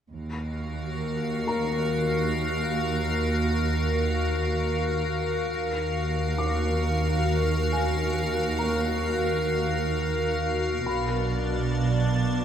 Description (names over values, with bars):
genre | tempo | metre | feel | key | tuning
cinematic | 67 BPM | 3/4 | straight | Eb harmonic minor | A4 = 440 Hz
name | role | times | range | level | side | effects
icy glass pad | sustained chords | 0.5-12.4 s | D4 to F5 | -27 LUFS | left 1 dB | chorus, built-in reverb
dark studio double bass section | bass | 0.1-12.4 s | B1 to Eb2 | -30 LUFS | right 2 dB | none
warm studio cello section | bass | 0.1-12.4 s | Eb2 to B2 | -29 LUFS | equal | none
dark baby grand piano | texture | 1.5-12.4 s | Bb4 to D6 | -36 LUFS | left 4 dB | none
room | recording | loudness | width
moderate scoring stage reverb, RT60 2.1 s | none | -24 LUFS | side -9 dB against mid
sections
0.1-5.5 A section; 5.5-12.4 B section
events
none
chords
0.1 Ebmadd9; 10.9 Bm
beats
| 0.11 1.01 1.91 | 2.80 3.70 4.59 | 5.49 6.38 7.28 | 8.17 9.07 9.96 | 10.86 11.76